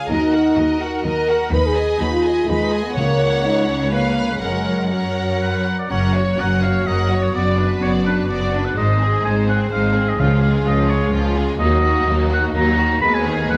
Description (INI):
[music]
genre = cinematic, heroic adventure film score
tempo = 126 BPM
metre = 3/4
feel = straight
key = F# major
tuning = A4 = 441 Hz
[part]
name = warm studio violin section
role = melody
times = 0.0-13.6 s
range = D#4 to B5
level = -30 LUFS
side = equal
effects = none
[part]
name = warm symphonic violin section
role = second line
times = 0.0-13.6 s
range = A#3 to E#5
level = -31 LUFS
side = equal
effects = none
[part]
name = rich symphonic viola section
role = accompaniment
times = 0.0-13.6 s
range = D#3 to C#5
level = -28 LUFS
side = equal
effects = none
[part]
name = rich symphonic cello section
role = bass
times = 0.0-13.6 s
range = C#2 to G#2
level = -24 LUFS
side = equal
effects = none
[part]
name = mellow French horn section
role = sustained chords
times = 0.1-13.6 s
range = F#3 to B4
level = -24 LUFS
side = equal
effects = none
[part]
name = clear symphonic double bass section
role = bass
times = 0.1-13.6 s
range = F#1 to D#2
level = -26 LUFS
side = equal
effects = none
[part]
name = timpani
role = percussion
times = 3.0-3.6, 10.2-10.9 s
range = C#3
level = -26 LUFS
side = equal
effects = none
[part]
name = clear oboe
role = second line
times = 5.4-13.6 s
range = B4 to B5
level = -24 LUFS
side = equal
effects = none
[sound]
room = wet scoring stage reverb, RT60 1.5 s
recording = none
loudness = -18 LUFS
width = mono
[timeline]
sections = 0.0-5.9 A section; 5.9-13.6 A section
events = none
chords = 0.1 D#m; 1.5 G#m/D#; 3.0 F#/C#; 3.9 C#7; 4.4 F#; 7.3 Bm/F#; 8.8 G#; 10.2 C#; 11.6 D#m; 13.0 G#m/D#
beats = | 0.11 0.58 1.05 | 1.53 2.01 2.48 | 2.96 3.44 3.92 | 4.42 4.92 5.41 | 5.90 6.39 6.87 | 7.34 7.82 8.30 | 8.77 9.25 9.72 | 10.19 10.66 11.13 | 11.60 12.08 12.55 | 13.02 13.50